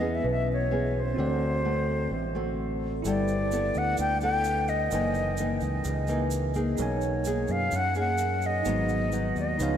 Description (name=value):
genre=bossa nova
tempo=128 BPM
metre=4/4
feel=straight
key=unclear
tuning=A4 = 440 Hz
part: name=breathy concert flute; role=melody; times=0.0-9.8 s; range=C5 to G5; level=-29 LUFS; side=left 1 dB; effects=none
part: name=bell-like tine electric piano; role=accompaniment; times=0.0-9.8 s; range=C4 to G#5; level=-35 LUFS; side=right 4 dB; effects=medium stereo tremolo
part: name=nylon-string guitar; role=accompaniment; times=0.0-9.8 s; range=F#2 to A4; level=-30 LUFS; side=left 2 dB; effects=none
part: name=fingered electric bass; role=bass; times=0.0-9.8 s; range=F#1 to F#2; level=-30 LUFS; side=equal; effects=none
part: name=tube shaker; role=percussion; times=3.0-9.8 s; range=none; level=-44 LUFS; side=right 9 dB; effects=none
room=wet cathedral reverb, RT60 5.8 s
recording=in a vast, echoing space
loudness=-25 LUFS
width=side -9 dB against mid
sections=0.0-3.0 A section; 3.0-9.8 B section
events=none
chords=0.0 E6; 1.2 D7; 3.0 G69; 4.9 F#13; 6.8 Bmaj13; 8.7 Abm7